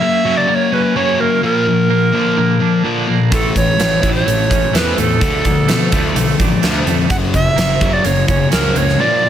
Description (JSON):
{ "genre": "quiet-loud alternative rock", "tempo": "127 BPM", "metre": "4/4", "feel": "straight", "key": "unclear", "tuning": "A4 = 439 Hz", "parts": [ { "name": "bright reedy tenor recorder", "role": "melody", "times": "0.0-9.3 s", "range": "A4 to F#5", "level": "-17 LUFS", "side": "right 3 dB", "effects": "slapback echo" }, { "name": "twelve-string electric guitar", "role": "arpeggios", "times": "0.0-9.3 s", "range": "F#2 to D4", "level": "-22 LUFS", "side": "right 13 dB", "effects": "tremolo, slapback echo" }, { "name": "thick fuzz guitar", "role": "riff", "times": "0.0-9.3 s", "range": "F#2 to C#4", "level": "-16 LUFS", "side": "left 5 dB", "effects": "distortion" }, { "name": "fuzz picked electric bass", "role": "bass", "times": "3.3-8.9 s", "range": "F#1 to B2", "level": "-20 LUFS", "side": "right 1 dB", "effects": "overdrive" }, { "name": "huge arena drum kit", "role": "drums", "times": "3.3-8.9 s", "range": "hi-hat, kick drum, snare drum", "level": "-18 LUFS", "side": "right 1 dB", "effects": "none" } ], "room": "light reverb, small room ambience", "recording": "none", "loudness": "-12 LUFS", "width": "side -10 dB against mid", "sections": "0.0-9.3 A section", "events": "none", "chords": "0.0 F#; 1.4 Bb; 3.3 A; 5.2 Dm; 7.1 F#", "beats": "0.01 0.49 0.96 | 1.43 1.90 2.38 2.85 | 3.32 3.79 4.27 4.74 | 5.21 5.68 6.16 6.63 | 7.10 7.58 8.05 8.52 | 8.99" }